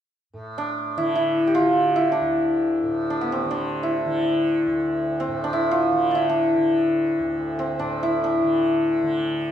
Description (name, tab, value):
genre	indian classical, Hindustani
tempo	free time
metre	none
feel	none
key	D raga kafi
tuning	A4 = 440 Hz
part	tanpura	drone	0.3-9.5 s	D2 to D3	-30 LUFS	right 1 dB	none
part	santur	melody	0.6-9.5 s	B3 to G4	-20 LUFS	equal	none
room	wet large studio reverb, RT60 1.3 s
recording	band playing live in one room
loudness	-20 LUFS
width	side -10 dB against mid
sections	0.3-9.5 A section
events	none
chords	none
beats	free time